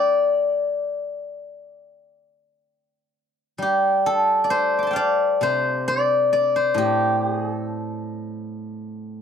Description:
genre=chinese traditional, Chinese solo plucked strings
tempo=59-71 BPM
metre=4/4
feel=rubato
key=D yu mode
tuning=A4 = 437 Hz
part: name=steel-string zither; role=solo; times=0.0-9.2 s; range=A2 to D6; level=-20 LUFS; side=left 1 dB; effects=none
room=light reverb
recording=dry, close 1970s-style studio recording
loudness=-19 LUFS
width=side -7 dB against mid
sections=0.0-3.6 A section; 3.6-9.2 B section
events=none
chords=none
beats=0.80 1.70 2.66 | 3.62 4.53 5.44 6.33 | 7.22 8.08 8.93

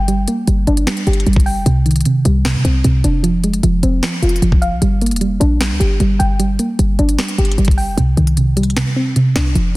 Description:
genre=hip hop, trap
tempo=152 BPM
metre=4/4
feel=half-time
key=C minor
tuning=A4 = 440 Hz
part: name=soft round pluck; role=accompaniment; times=0.0-9.8 s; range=C3 to G5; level=-16 LUFS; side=right 2 dB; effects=chorus
part: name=short 808-style bass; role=bass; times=0.0-9.7 s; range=F1 to C3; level=-15 LUFS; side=equal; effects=none
part: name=trap drum kit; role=drums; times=0.1-9.6 s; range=finger snaps, hi-hat, kick drum, snare drum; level=-19 LUFS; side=equal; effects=none
room=digital ambience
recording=dense, heavily limited modern master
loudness=-12 LUFS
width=side -19 dB against mid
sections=0.0-8.0 A section; 8.0-9.8 B section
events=none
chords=0.0 Gm; 1.7 Cmadd9; 3.2 Fm; 4.8 Gm; 8.0 Cmadd9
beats=| 0.08 0.48 0.87 1.26 | 1.66 2.06 2.45 2.84 | 3.24 3.63 4.03 4.42 | 4.82 5.21 5.61 6.00 | 6.40 6.79 7.19 7.58 | 7.98 8.37 8.77 9.16 | 9.55

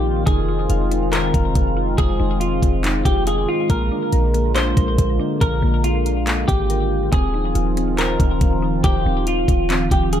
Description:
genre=hip hop, atmospheric cloud-rap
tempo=140 BPM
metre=4/4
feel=half-time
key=unclear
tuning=A4 = 440 Hz
part: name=semi-hollow electric guitar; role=melody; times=0.0-10.2 s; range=F4 to C5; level=-24 LUFS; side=left 1 dB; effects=lush chorus, ping-pong delay
part: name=dark analog pad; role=sustained chords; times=0.0-10.2 s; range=D3 to D5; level=-23 LUFS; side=equal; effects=chorus, sidechain pumping
part: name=mallet-like synth pluck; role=arpeggios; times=0.0-10.2 s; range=Bb3 to F5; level=-29 LUFS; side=left 2 dB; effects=chorus, ping-pong delay
part: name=clean 808-style bass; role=bass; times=0.0-10.2 s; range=Eb1 to Bb1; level=-21 LUFS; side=equal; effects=none
part: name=smooth R&B drum kit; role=drums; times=0.3-10.2 s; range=handclaps, hi-hat, kick drum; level=-20 LUFS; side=equal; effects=none
room=light reverb, digital ambience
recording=none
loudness=-16 LUFS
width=side -10 dB against mid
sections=0.0-10.2 A section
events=none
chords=0.3 Fm7; 3.7 Bb7; 7.1 Ebsus2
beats=| 0.27 0.70 1.13 1.55 | 1.98 2.41 2.84 3.27 | 3.70 4.13 4.55 4.98 | 5.41 5.84 6.27 6.70 | 7.13 7.55 7.98 8.41 | 8.84 9.27 9.70 10.13

